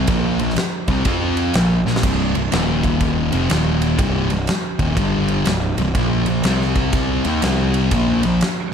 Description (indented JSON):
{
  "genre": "blues rock power trio and southern rock",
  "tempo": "122 BPM",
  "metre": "4/4",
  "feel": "swing 64% on 8ths",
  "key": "C minor",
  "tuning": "A4 = 440 Hz",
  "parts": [
    { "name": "thick fuzz guitar", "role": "riff", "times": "0.0-8.4 s", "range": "C2 to F4", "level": "-18 LUFS", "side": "left 1 dB", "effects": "distortion" },
    { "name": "fuzz picked electric bass", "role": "bass", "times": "0.0-8.4 s", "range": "C1 to F2", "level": "-23 LUFS", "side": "equal", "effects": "overdrive" },
    { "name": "huge arena drum kit", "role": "drums", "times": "0.1-8.6 s", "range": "crash cymbal, kick drum, ride cymbal, snare drum", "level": "-22 LUFS", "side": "equal", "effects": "none" }
  ],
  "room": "light reverb",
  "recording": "none",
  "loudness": "-16 LUFS",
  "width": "side -7 dB against mid",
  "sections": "0.0-8.7 A section",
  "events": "drum fill 1.8",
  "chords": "0.1 Bb5; 1.0 F5; 1.5 Bb5; 2.0 C5; 2.5 Eb5; 3.2 F5; 3.5 Eb5; 4.0 Cm; 5.0 G5; 5.5 C5; 6.0 Bb5; 6.4 C5; 7.2 Eb5; 7.4 C5; 7.9 Bb5"
}